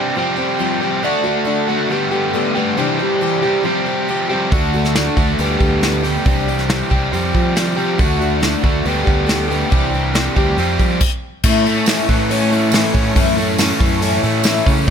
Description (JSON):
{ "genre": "folk rock and heartland rock", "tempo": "138 BPM", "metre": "4/4", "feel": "straight", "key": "unclear", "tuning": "A4 = 440 Hz", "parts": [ { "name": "picked plugged-in twelve-string acoustic guitar", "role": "accompaniment", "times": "0.0-14.9 s", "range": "A2 to G4", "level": "-21 LUFS", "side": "left 4 dB", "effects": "analog chorus" }, { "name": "overdriven electric guitar", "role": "riff", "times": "0.0-14.9 s", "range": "A2 to G4", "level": "-18 LUFS", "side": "right 2 dB", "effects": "none" }, { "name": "fingered electric bass", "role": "bass", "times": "4.5-14.9 s", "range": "C2 to F3", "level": "-21 LUFS", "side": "right 1 dB", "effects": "none" }, { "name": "soft brush drum kit", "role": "drums", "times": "4.5-14.9 s", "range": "crash cymbal, hi-hat, kick drum, snare drum", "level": "-18 LUFS", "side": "equal", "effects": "none" }, { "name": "mellow tonewheel organ", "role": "sustained chords", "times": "11.4-14.9 s", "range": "E4 to C#6", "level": "-27 LUFS", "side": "right 2 dB", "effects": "slow rotary speaker, chorus vibrato" }, { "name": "tambourine", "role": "percussion", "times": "11.9-14.5 s", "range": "none", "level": "-26 LUFS", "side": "right 12 dB", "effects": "none" } ], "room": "light reverb", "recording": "none", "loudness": "-14 LUFS", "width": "side -7 dB against mid", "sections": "0.0-11.4 A section; 11.4-14.9 B section", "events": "stop 11.0-11.4", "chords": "0.2 Fsus2; 1.0 D; 1.9 Gadd9/D; 2.8 Cadd9; 3.6 Fsus2; 4.5 D; 5.4 Gadd9/D; 6.3 Cadd9; 7.1 Fsus2; 8.0 D; 8.9 Gadd9/D; 9.7 Cadd9; 10.6 Fsus2; 11.0 N.C.; 11.4 A", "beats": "0.17 0.60 | 1.04 1.47 1.91 2.34 | 2.78 3.21 3.65 4.08 | 4.52 4.95 5.39 5.82 | 6.26 6.69 7.12 7.56 | 7.99 8.42 8.86 9.29 | 9.72 10.15 10.58 11.01 | 11.45 11.88 12.30 12.73 | 13.16 13.59 14.02 14.45 | 14.88" }